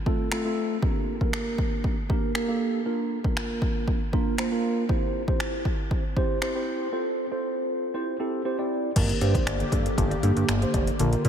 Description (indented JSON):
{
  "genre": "dance-pop",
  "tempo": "118 BPM",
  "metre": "4/4",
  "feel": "straight",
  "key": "G dorian",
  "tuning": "A4 = 440 Hz",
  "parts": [
    { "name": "mellow tine electric piano", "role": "accompaniment", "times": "0.1-11.3 s", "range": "A3 to D5", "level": "-27 LUFS", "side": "right 2 dB", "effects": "wide subtle chorus" },
    { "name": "deep house drum kit", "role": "drums", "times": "0.1-11.3 s", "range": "crash cymbal, finger snaps, hi-hat, kick drum", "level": "-27 LUFS", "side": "equal", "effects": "overdrive" },
    { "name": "airy breathy pad", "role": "sustained chords", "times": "9.0-11.3 s", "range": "D3 to G4", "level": "-31 LUFS", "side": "left 2 dB", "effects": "chorus, sidechain pumping" },
    { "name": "mallet-like synth pluck", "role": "arpeggios", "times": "9.0-11.3 s", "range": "D3 to D5", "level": "-33 LUFS", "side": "left 5 dB", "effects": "chorus, phaser, sidechain pumping, ping-pong delay" },
    { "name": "chorused synth bass", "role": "bass", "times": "9.0-11.3 s", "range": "F1 to Bb2", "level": "-24 LUFS", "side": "equal", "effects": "sidechain pumping" }
  ],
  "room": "moderate cathedral reverb, RT60 4.8 s",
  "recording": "dreamy mix soaked in reverb",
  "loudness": "-24 LUFS",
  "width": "side -8 dB against mid",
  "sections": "0.0-9.0 A section; 9.0-11.3 B section",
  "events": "none",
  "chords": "0.0 F; 0.8 Gm; 2.9 Bb; 4.9 C; 6.9 F; 7.9 C; 9.0 Gm",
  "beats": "0.32 | 0.82 1.33 1.84 2.35 | 2.86 3.37 3.88 4.38 | 4.89 5.40 5.91 6.42 | 6.93 7.43 7.94 8.45 | 8.96 9.47 9.98 10.49 | 10.99"
}